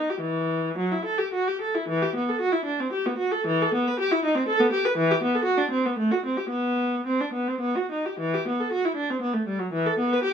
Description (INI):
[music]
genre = classical, baroque-style suite movement for unaccompanied viola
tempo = 100-126 BPM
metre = 3/4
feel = rubato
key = E minor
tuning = A4 = 437 Hz
[part]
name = rich viola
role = solo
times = 0.0-10.3 s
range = E3 to B4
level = -23 LUFS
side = equal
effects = none
[sound]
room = light reverb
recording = none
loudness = -23 LUFS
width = side -7 dB against mid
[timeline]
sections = 0.0-1.9 A section; 1.9-10.3 B section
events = none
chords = none